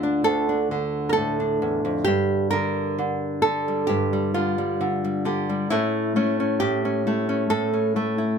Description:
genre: folk, solo fingerstyle acoustic guitar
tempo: 66 BPM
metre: 4/4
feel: rubato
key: unclear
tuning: A4 = 440 Hz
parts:
  - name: nylon-string guitar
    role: solo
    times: 0.0-8.4 s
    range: D2 to Bb4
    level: -21 LUFS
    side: equal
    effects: none
room: light reverb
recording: none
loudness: -21 LUFS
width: side -6 dB against mid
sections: 0.0-8.4 A section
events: none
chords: 0.0 Dm; 2.1 Gm; 5.7 A7

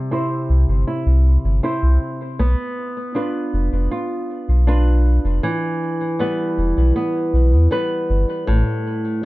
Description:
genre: folktronica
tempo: 79 BPM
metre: 4/4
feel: straight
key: unclear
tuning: A4 = 441 Hz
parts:
  - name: flamenco guitar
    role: arpeggios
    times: 0.0-9.2 s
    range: A2 to C5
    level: -21 LUFS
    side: equal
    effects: low-pass filter, ping-pong delay, plate reverb
  - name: warm sub bass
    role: bass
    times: 0.5-8.6 s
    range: E1 to E2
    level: -15 LUFS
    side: equal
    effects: none
room: light reverb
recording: dark, warm production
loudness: -16 LUFS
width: side -19 dB against mid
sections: 0.0-9.2 A section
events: filter sweep on nylon-string guitar 0.0-9.2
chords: 0.0 C; 2.4 Bdim; 5.4 Em; 8.5 A7(no3)

